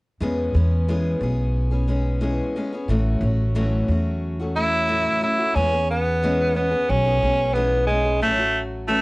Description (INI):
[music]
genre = folk rock and heartland rock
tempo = 90 BPM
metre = 4/4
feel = straight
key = E major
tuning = A4 = 439 Hz
[part]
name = picked steel-string acoustic guitar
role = accompaniment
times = 0.2-9.0 s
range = A2 to G#4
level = -26 LUFS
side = left 1 dB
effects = cassette tape
[part]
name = upright bass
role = bass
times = 0.2-9.0 s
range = A1 to E2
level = -22 LUFS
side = equal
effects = none
[part]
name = raspy tenor saxophone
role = melody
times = 4.6-9.0 s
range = G#3 to E4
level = -20 LUFS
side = right 1 dB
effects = cassette tape
[sound]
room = light reverb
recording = home recording on cassette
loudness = -19 LUFS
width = side -23 dB against mid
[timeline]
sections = 0.2-5.6 A section; 5.6-9.0 B section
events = none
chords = 0.2 E6; 2.9 A6; 5.6 E6; 8.2 A6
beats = | 0.21 0.88 1.55 2.22 | 2.89 3.56 4.22 4.89 | 5.56 6.22 6.89 7.55 | 8.22 8.88